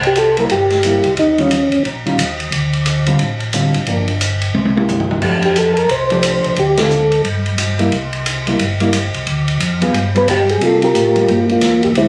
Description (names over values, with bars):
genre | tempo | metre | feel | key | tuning
soul jazz organ trio | 178 BPM | 4/4 | swing 62% on 8ths | C mixolydian | A4 = 440 Hz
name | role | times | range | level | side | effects
tonewheel organ | bass | 0.0-12.1 s | G1 to C3 | -22 LUFS | equal | chorus vibrato, slow rotary speaker
swinging big-band drum kit | drums | 0.0-12.1 s | crash cymbal, hi-hat, kick drum, ride cymbal, snare drum, toms | -22 LUFS | equal | none
percussive tonewheel organ | melody | 0.1-1.8, 5.5-7.2, 10.2-12.1 s | G#3 to C5 | -16 LUFS | equal | chorus vibrato, slow rotary speaker
hollow-body jazz guitar | accompaniment | 0.4-11.3 s | D3 to Ab4 | -21 LUFS | equal | none
room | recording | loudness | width
light reverb | recorded on a phone in the room, studio ambience, compression | -15 LUFS | mono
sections
0.0-10.6 A section; 10.6-12.1 B section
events
drum fill 4.6-5.2; band accent 6.7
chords
0.0 C7; 1.2 Eb9; 2.5 Dm7; 3.9 Gm7; 4.6 C7; 5.2 F69; 6.6 Dm7; 7.2 Gm6; 7.9 C7; 9.3 Dm; 9.9 G7b9; 10.6 C7sus4